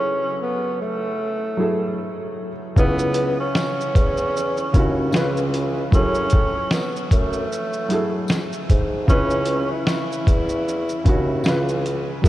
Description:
lo-fi hip hop; 76 BPM; 4/4; swing 56% on 16ths; C# minor; A4 = 440 Hz
breathy tenor saxophone; melody; 0.0-12.3 s; A3 to E4; -25 LUFS; equal; analog delay
felt-muted upright piano; accompaniment; 0.0-12.3 s; C#3 to B4; -25 LUFS; right 1 dB; cassette tape
dark bassoon; bass; 2.8-12.3 s; C#2 to A2; -25 LUFS; equal
trip hop sampler-style drum kit; drums; 2.8-12.3 s; hi-hat, kick drum, shaker, snare drum; -20 LUFS; equal
tambourine; percussion; 3.6-11.6 s; -46 LUFS; left 6 dB
moderate huge ambient reverb, RT60 8.1 s; dreamy mix soaked in reverb, cassette tape; -18 LUFS; side -15 dB against mid
0.0-12.3 A section
0.0 F#m9; 2.8 C#m7; 5.1 C#7; 5.9 F#m9; 9.1 C#m7; 11.4 C#7

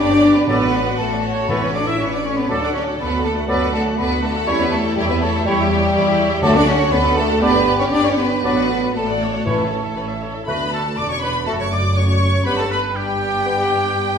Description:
quick classical-period movement for symphony orchestra; 120 BPM; 4/4; straight; D major; A4 = 443 Hz
warm studio violin section; melody; 0.0-14.2 s; E4 to D6; -26 LUFS; left 3 dB
concert flute; second line; 0.0-14.2 s; G5 to E6; -26 LUFS; right 1 dB
rich studio violin section; second line; 0.0-14.2 s; G4 to E5; -25 LUFS; left 1 dB
dark studio viola section; accompaniment; 0.0-14.2 s; A3 to F#5; -27 LUFS; right 2 dB
dark French horn section; sustained chords; 0.0-14.2 s; G3 to E4; -21 LUFS; left 1 dB
warm studio cello section; bass; 0.0-14.2 s; D2 to E4; -26 LUFS; right 2 dB
warm studio double bass section; bass; 0.0-14.2 s; E1 to E2; -25 LUFS; right 2 dB
clear oboe; second line; 0.5-14.2 s; G4 to D5; -28 LUFS; right 2 dB
mellow clarinet; second line; 0.5-13.6 s; D4 to A4; -29 LUFS; right 1 dB
dark bassoon; accompaniment; 0.5-13.6 s; E3 to B3; -27 LUFS; equal
timpani; percussion; 0.5-2.2, 6.4-11.2 s; A2 to D3; -28 LUFS; left 1 dB
mellow trumpet section; stabs; 10.5-14.2 s; G4 to D5; -25 LUFS; right 1 dB
wet recital hall reverb, RT60 1.3 s; recorded in a church or concert hall; -16 LUFS; side -7 dB against mid
0.0-10.5 A section; 10.5-14.2 B section
0.5 D/A; 1.5 A; 2.5 D; 4.5 C#dim/E; 6.4 D; 7.4 G; 8.4 D/A; 9.5 A; 10.5 D; 11.5 Dmaj7/F#; 12.5 G

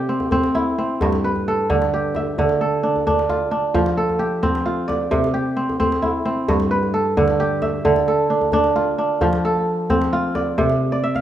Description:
west african traditional, West African string and xylophone music; 88 BPM (dotted quarters); 12/8; straight; D dorian; A4 = 440 Hz
kora; arpeggios; 0.0-11.2 s; G2 to F5; -18 LUFS; right 1 dB
djembe; percussion; 0.1-11.2 s; -25 LUFS; left 2 dB
light reverb, small room ambience; rough home demo mix, studio ambience; -17 LUFS; side -11 dB against mid
0.0-11.2 A section
kora fill 10.9
0.0 C; 1.0 G; 2.4 Dm; 3.7 F; 5.1 C; 6.5 G; 7.8 Dm; 9.2 F; 10.6 Cadd9

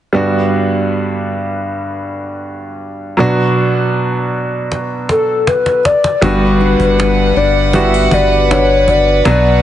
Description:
pop ballad; 79 BPM; 4/4; straight; A4 = 440 Hz
bright grand piano; accompaniment; 0.1-9.6 s; G2 to F#4; -16 LUFS; right 2 dB
cajon; drums; 4.7-9.4 s; -20 LUFS; right 1 dB
hollow clarinet-like synth lead; melody; 5.1-9.6 s; A4 to E5; -13 LUFS; left 3 dB; chorus
warm studio string section; sustained chords; 6.2-9.6 s; D4 to F#5; -18 LUFS; right 4 dB
fingerpicked steel-string acoustic guitar; arpeggios; 6.2-9.6 s; B2 to B4; -17 LUFS; left 5 dB; ping-pong delay
saturated sub bass; bass; 6.2-9.6 s; G1 to B1; -16 LUFS; equal
moderate lush hall reverb, RT60 2.7 s; heavily compressed radio sound, multiband compression, nothing above 10.4 kHz; -11 LUFS; side -11 dB against mid
0.1-6.2 A section; 6.2-9.6 B section
drum fill 4.7-6.2
0.1 Gmaj7; 3.2 Bm; 5.8 N.C.; 6.2 Gmaj7

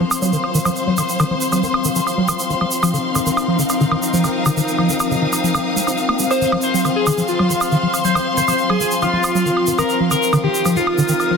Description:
psychedelic trance; 138 BPM; 4/4; straight; A4 = 442 Hz
pulsing gated texture; sustained chords; 0.0-11.4 s; F3 to C4; -23 LUFS; left 4 dB; chorus, built-in reverb
liquid acid bass; riff; 0.0-11.4 s; D3 to Eb4; -20 LUFS; equal; phaser, auto-pan, ping-pong delay
warm studio string section; texture; 0.0-11.4 s; Eb4 to Eb6; -22 LUFS; left 3 dB
woodblock; drums; 0.1-11.3 s; -24 LUFS; right 2 dB; low-pass filter on hats, low-pass filter on perc, low-pass filter on snare, low-pass filter on room
tube shaker; percussion; 0.1-11.3 s; -25 LUFS; right 4 dB
overdriven synth lead; melody; 6.3-11.4 s; F4 to C5; -19 LUFS; equal; phaser, ping-pong delay
wet lush hall reverb, RT60 2.0 s, digital ambience; dense, heavily limited modern master; -15 LUFS; side -5 dB against mid
0.0-11.4 A section
filter sweep on synth texture 0.0-11.4
0.0 F5; 2.8 Eb5; 6.3 F5; 9.8 Eb5

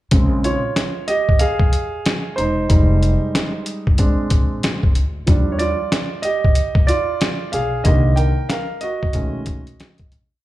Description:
hip hop, jazz-hop; 93 BPM; 4/4; swing 61% on 16ths; A4 = 440 Hz
warm concert grand piano; accompaniment; 0.1-10.1 s; Db3 to G5; -21 LUFS; right 2 dB; slapback echo
upright bass; bass; 0.1-10.4 s; E1 to Eb2; -19 LUFS; equal
boom bap sampler-style drum kit; drums; 0.1-10.3 s; hi-hat, kick drum, snare drum; -17 LUFS; equal
studio reverb; live gig heard through the venue's PA, club reverb; -16 LUFS; side -16 dB against mid
0.1-10.4 head
grand piano solo 0.1-10.4; fade-out 7.9-10.4
0.1 Bbm9; 2.7 Fm7; 4.0 Bb9; 5.3 Ebmaj7; 7.9 Cm7; 9.1 B13

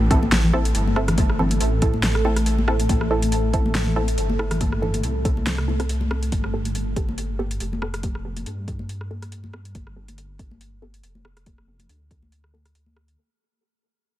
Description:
deep dubstep; 140 BPM; 4/4; swing 55% on 16ths, half-time; A4 = 440 Hz
deep dark ambient pad; sustained chords; 0.5-13.2 s; A3 to A4; -30 LUFS; equal; chorus, built-in reverb
dark detuned saw bass; bass; 0.0-13.2 s; F1 to G2; -24 LUFS; equal
filtered dub chord stab; stabs; 0.1-13.1 s; B3 to A4; -28 LUFS; right 2 dB; chorus, dub echo
deep house drum kit; drums; 0.1-13.2 s; hi-hat, rim click, snare drum; -28 LUFS; equal; soft clipping on snare
electronic kick drum; drums; 0.1-12.2 s; -23 LUFS; equal
congas; percussion; 0.2-12.9 s; -29 LUFS; left 2 dB; dub echo
little or no reverb; dense, heavily limited modern master, vinyl crackle; -20 LUFS; side -14 dB against mid
0.0-13.2 A section
fade-out 0.0-13.2; filter sweep on detuned saw bass 0.0-13.2; filter sweep on synth stab 0.0-13.2
0.0 Am; 6.3 Gadd9

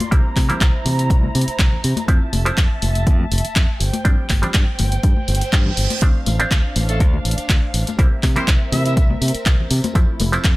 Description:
filtered disco house; 122 BPM; 4/4; swing 53% on 16ths; A4 = 440 Hz
muted clav; accompaniment; 0.0-10.6 s; F3 to E4; -24 LUFS; right 1 dB; phaser, sidechain pumping, low-pass filter
dark studio violin section; sustained chords; 0.0-10.6 s; C4 to Bb5; -29 LUFS; right 1 dB; vintage 12-bit sampler grit, sidechain pumping, low-pass filter
punchy analog drum machine; drums; 0.0-10.6 s; handclaps, hi-hat; -24 LUFS; equal; sidechain pumping on hats
congas and tambourine; percussion; 0.0-10.6 s; -28 LUFS; left 4 dB; sidechain pumping on perc, low-pass filter on perc
modern bright fingered electric bass; bass; 0.1-10.5 s; F1 to C3; -20 LUFS; equal; sidechain pumping, low-pass filter
electronic kick drum; drums; 0.1-10.6 s; -16 LUFS; equal
reverse cymbal; sound effects; 5.3-6.0 s; -27 LUFS; right 6 dB
brilliant horn section; melody; 6.9-9.1 s; A3 to E5; -28 LUFS; right 1 dB; sidechain pumping, low-pass filter, digital delay
small room ambience; -15 LUFS; side -19 dB against mid
0.0-10.6 A section
reverse cymbal 5.3-6.0
0.1 C7; 2.1 Fmaj7; 3.8 G7sus4; 6.0 Dm7; 8.0 C7; 10.0 Fmaj7

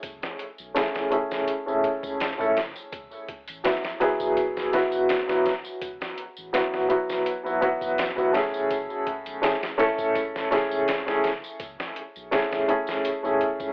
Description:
trip hop; 83 BPM; 4/4; straight; F# minor; A4 = 440 Hz
warm sub bass; bass; 0.0-13.7 s; E1 to C#2; -50 LUFS; equal
trip hop sampler-style drum kit; drums; 0.0-13.7 s; hi-hat, kick drum, snare drum; -31 LUFS; equal; cassette tape
tambourine and triangle; percussion; 0.0-13.7 s; -46 LUFS; equal
clear upright piano; accompaniment; 0.7-13.7 s; F#3 to A4; -23 LUFS; equal; tremolo, low-pass filter, cassette tape, tape echo
moderate booth ambience, RT60 0.2 s; home recording on cassette, telephone sound; -22 LUFS; side -36 dB against mid
0.0-13.7 A section
filter sweep on upright piano 0.0-13.7
0.0 F#m7 (rootless); 2.9 Esus2; 8.7 F#m7 (rootless)

